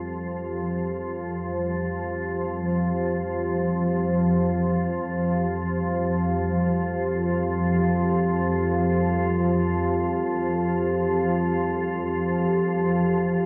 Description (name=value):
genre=dark ambient drone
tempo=free time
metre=none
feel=none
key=unclear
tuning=A4 = 440 Hz
part: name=deep dark ambient pad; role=sustained chords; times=0.0-13.5 s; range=G4 to F5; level=-29 LUFS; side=equal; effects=chorus, built-in reverb
part: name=organ-like drone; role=drone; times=0.0-13.5 s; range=F2 to F3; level=-26 LUFS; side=equal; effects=ensemble chorus, built-in reverb
part: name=bronze singing bowl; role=texture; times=0.0-13.5 s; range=none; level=barely audible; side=none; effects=none
room=wet cathedral reverb, RT60 6.3 s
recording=in a vast, echoing space, nothing above 10.9 kHz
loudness=-24 LUFS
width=mono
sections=0.0-13.5 A section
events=none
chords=0.0 Fsus2